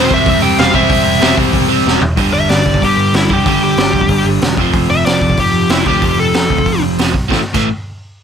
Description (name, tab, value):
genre	punk rock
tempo	187 BPM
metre	4/4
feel	straight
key	unclear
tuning	A4 = 439 Hz
part	high-gain lead guitar	melody	0.0-6.8 s	E4 to G5	-15 LUFS	left 2 dB	distortion
part	high-gain distorted guitar	riff	0.0-2.0 s	C3 to C4	-18 LUFS	equal	distortion
part	overdriven electric guitar	riff	0.0-7.7 s	F2 to C4	-17 LUFS	right 14 dB	none
part	overdriven semi-hollow guitar	riff	0.0-7.7 s	F2 to C4	-18 LUFS	left 14 dB	none
part	picked electric bass	bass	0.0-7.7 s	E1 to G2	-19 LUFS	equal	none
part	raw garage drum kit	drums	0.1-7.6 s	crash cymbal, hi-hat, kick drum, snare drum, toms	-16 LUFS	equal	none
room	little or no reverb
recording	none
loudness	-10 LUFS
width	side -7 dB against mid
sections	0.0-2.2 A section; 2.2-7.3 B section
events	drum fill 1.9-2.2; lead electric guitar solo 2.2-7.3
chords	0.0 C/E; 2.2 G5; 4.6 F; 7.3 A5